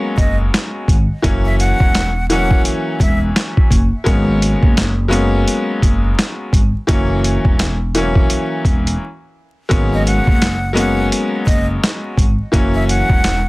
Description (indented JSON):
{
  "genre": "hip hop, boom-bap hip-hop",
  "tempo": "85 BPM",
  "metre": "4/4",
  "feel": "swing 60% on 16ths",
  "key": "G# minor",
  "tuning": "A4 = 438 Hz",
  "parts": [
    { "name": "bright upright piano", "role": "accompaniment", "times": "0.0-13.4 s", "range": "E3 to C#4", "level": "-19 LUFS", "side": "left 1 dB", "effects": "plate reverb" },
    { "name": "breathy jazz flute", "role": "melody", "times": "0.2-3.2, 9.9-13.5 s", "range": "D#5 to F#5", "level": "-22 LUFS", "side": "equal", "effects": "digital delay" },
    { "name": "upright bass", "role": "bass", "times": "0.2-13.5 s", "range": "E1 to G#1", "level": "-17 LUFS", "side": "equal", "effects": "none" },
    { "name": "boom bap sampler-style drum kit", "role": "drums", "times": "0.2-13.4 s", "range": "handclaps, hi-hat, kick drum, snare drum", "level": "-15 LUFS", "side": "equal", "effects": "none" }
  ],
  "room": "little or no reverb",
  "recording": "dense, heavily limited modern master, vinyl crackle",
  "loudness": "-13 LUFS",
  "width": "side -21 dB against mid",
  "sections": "0.0-13.5 A section",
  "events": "break 9.0-9.7",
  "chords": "0.0 G#m11; 1.2 F#7; 4.1 G#m11; 6.9 F#7; 9.7 G#m11; 12.5 F#7",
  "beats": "0.53 | 1.24 1.95 2.65 3.36 | 4.06 4.77 5.47 6.18 | 6.89 7.59 8.30 9.01 | 9.71 10.42 11.12 11.83 | 12.53 13.24"
}